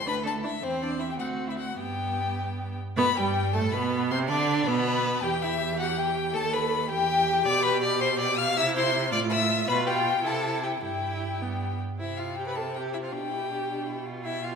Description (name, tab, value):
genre	quick classical-period movement for string quartet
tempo	106 BPM (dotted quarters)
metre	6/8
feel	rubato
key	G major, C major from 7.5 s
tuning	A4 = 440 Hz
part	clear violin	melody	0.0-14.6 s	C5 to F6	-29 LUFS	left 6 dB	none
part	rich violin	second line	0.1-14.6 s	C4 to F5	-31 LUFS	left 3 dB	none
part	rich viola	accompaniment	0.1-14.6 s	G3 to B4	-31 LUFS	right 3 dB	none
part	clear cello	bass	0.1-14.6 s	D2 to D3	-31 LUFS	right 4 dB	none
room	wet scoring stage reverb, RT60 1.5 s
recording	minimal, uncompressed stereo recording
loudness	-24 LUFS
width	side -6 dB against mid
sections	0.0-3.0 A section; 3.0-12.0 B section; 12.0-14.6 A section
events	none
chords	0.1 Asus24/D; 0.6 C/E; 1.2 D7; 1.8 G; 4.1 Csus2; 4.7 N.C.; 5.2 Em; 6.3 B7/D#; 6.9 Em; 7.5 G/B; 8.6 C; 9.1 F/A; 9.7 G7/B; 10.2 C; 10.8 Em/G; 11.4 G; 12.0 Cadd11; 13.1 G/B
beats	0.07 | 0.63 1.20 | 1.79 2.38 | 2.97 3.54 | 4.11 4.67 | 5.23 5.79 | 6.34 6.90 | 7.46 8.01 | 8.56 9.12 | 9.68 10.24 | 10.82 11.41 | 11.99 12.56 | 13.12 13.68 | 14.25